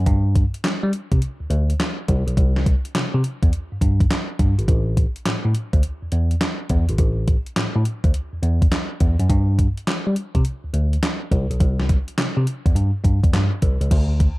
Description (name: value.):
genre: R&B, new jack swing.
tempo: 104 BPM.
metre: 4/4.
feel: swing 66% on 16ths.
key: unclear.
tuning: A4 = 441 Hz.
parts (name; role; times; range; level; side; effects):
bell-like tine electric piano; bass; 0.0-14.3 s; G#1 to G3; -20 LUFS; equal; none.
gated 80s digital drum machine; drums; 0.1-14.4 s; crash cymbal, handclaps, hi-hat, kick drum, snare drum; -20 LUFS; equal; gated reverb, gated reverb snare, overdrive.
room: little or no reverb.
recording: dark, warm production.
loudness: -18 LUFS.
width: side -20 dB against mid.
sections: 0.0-13.9 A section.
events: none.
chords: none.